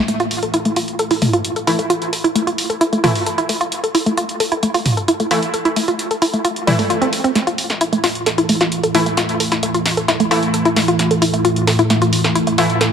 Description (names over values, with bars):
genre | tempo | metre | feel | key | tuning
driving peak-time techno | 132 BPM | 4/4 | straight | unclear | A4 = 444 Hz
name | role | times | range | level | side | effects
deep dark ambient pad | drone | 0.0-0.1, 8.0-12.9 s | A2 to E3 | -21 LUFS | right 1 dB | chorus, built-in reverb
woody wave-folded pluck | riff | 0.1-12.9 s | G3 to A4 | -17 LUFS | equal | chorus, tape echo
punchy analog drum machine | drums | 0.1-12.9 s | hi-hat, snare drum, toms | -21 LUFS | right 1 dB | high-pass filter on hats, high-pass filter on toms, high-pass filter on snare
supersaw stab | stabs | 1.7-12.7 s | E3 to E4 | -22 LUFS | equal | low-pass filter, dub echo
swell | sound effects | 6.6-7.4 s | none | -26 LUFS | right 1 dB | none
room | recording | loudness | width
moderate lush hall reverb, RT60 2.0 s | none | -14 LUFS | side -7 dB against mid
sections
0.1-7.4 A section; 7.4-12.9 B section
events
filter sweep on supersaw synth 0.1-7.4; swell 6.6-7.4; build-up 7.4-12.9; drum fill 7.4-12.9; filter sweep on synth arpeggio sound 7.4-12.9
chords
0.1 A5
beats
| 0.08 0.54 0.99 1.45 | 1.90 2.36 2.81 3.27 | 3.72 4.17 4.63 5.08 | 5.54 5.99 6.45 6.90 | 7.36 7.81 8.27 8.72 | 9.17 9.63 10.08 10.54 | 10.99 11.45 11.90 12.36 | 12.81